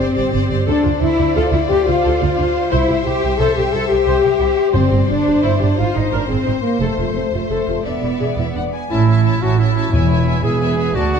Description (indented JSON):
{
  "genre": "cinematic",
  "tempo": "117 BPM (dotted quarters)",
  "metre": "12/8",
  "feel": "straight",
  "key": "C major",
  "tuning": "A4 = 441 Hz",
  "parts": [
    { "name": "warm symphonic violin section", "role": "melody", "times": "0.0-11.2 s", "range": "B4 to G#5", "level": "-28 LUFS", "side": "left 5 dB", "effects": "none" },
    { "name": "warm symphonic violin section", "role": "second line", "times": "0.0-11.2 s", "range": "C5 to A5", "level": "-26 LUFS", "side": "left 6 dB", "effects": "none" },
    { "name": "warm symphonic viola section", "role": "accompaniment", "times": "0.0-11.2 s", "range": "B3 to C5", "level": "-26 LUFS", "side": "equal", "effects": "none" },
    { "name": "warm French horn section", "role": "sustained chords", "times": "0.0-8.7 s", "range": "A3 to A4", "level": "-18 LUFS", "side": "left 5 dB", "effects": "none" },
    { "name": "rich studio double bass section", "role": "bass", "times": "0.0-11.2 s", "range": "E1 to D2", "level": "-19 LUFS", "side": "right 4 dB", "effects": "none" },
    { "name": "rich symphonic cello section", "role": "bass", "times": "0.0-11.2 s", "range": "D2 to A4", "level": "-23 LUFS", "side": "right 4 dB", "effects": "none" },
    { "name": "timpani", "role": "percussion", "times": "4.7-5.2, 9.9-10.4 s", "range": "E2 to G2", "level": "-20 LUFS", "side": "left 2 dB", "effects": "none" },
    { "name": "clear clarinet", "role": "second line", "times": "8.9-11.2 s", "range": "E4 to G#4", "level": "-22 LUFS", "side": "left 1 dB", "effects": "none" },
    { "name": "bright trumpet", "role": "stabs", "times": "8.9-11.2 s", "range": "E4 to G#4", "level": "-24 LUFS", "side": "right 3 dB", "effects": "none" }
  ],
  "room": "moderate scoring stage reverb, RT60 2.0 s",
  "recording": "dark, warm production",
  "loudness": "-14 LUFS",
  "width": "side -6 dB against mid",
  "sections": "0.0-8.9 A section; 8.9-11.2 B section",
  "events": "none",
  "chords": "0.0 Gsus4; 0.7 Dm7; 2.7 C; 4.7 Gsus4; 5.8 Abadd9; 6.8 F; 7.8 E7; 8.9 A; 9.9 E",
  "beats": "0.16 | 0.67 1.18 1.68 2.19 | 2.70 3.21 3.72 4.23 | 4.74 5.25 5.76 6.28 | 6.79 7.31 7.84 8.37 | 8.90 9.42 9.93 10.44 | 10.95"
}